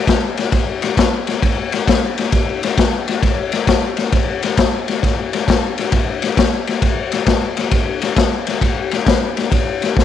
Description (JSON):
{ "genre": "blues", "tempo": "133 BPM", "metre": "4/4", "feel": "swing 66% on 8ths", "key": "none", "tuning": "none", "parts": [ { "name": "crunchy breakbeat drum kit", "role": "drums", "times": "0.1-10.0 s", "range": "kick drum, ride cymbal, snare drum", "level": "-15 LUFS", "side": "left 2 dB", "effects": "none" } ], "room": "moderate plate reverb, RT60 1.8 s", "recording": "1960s-style stereo", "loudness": "-15 LUFS", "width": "side -10 dB against mid", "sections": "0.0-10.0 A section", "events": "none", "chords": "none", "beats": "0.07 0.53 0.97 | 1.42 1.87 2.32 2.77 | 3.22 3.67 4.12 4.57 | 5.02 5.47 5.92 6.37 | 6.82 7.27 7.72 8.17 | 8.62 9.07 9.52 9.97" }